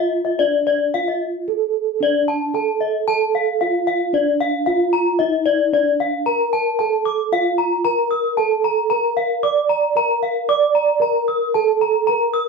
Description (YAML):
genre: gamelan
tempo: 113 BPM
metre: 4/4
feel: straight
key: D pelog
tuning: A4 = 440 Hz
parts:
  - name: gamelan-type bronze metallophone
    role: melody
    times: 0.0-12.5 s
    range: D4 to D5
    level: -19 LUFS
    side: right 4 dB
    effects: none
  - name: gamelan-type bronze metallophone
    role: arpeggios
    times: 0.0-12.5 s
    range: D5 to Eb6+35c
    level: -20 LUFS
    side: left 4 dB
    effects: none
room: wet studio reverb, RT60 0.8 s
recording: band playing live in one room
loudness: -16 LUFS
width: side -4 dB against mid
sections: 0.0-2.0 A section; 2.0-12.5 B section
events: break 1.2-2.0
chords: none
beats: 0.38 0.94 1.48 | 2.02 2.55 3.08 3.61 | 4.14 4.67 5.20 5.72 | 6.25 6.79 7.31 7.84 | 8.37 8.90 9.43 9.96 | 10.49 11.02 11.55 12.08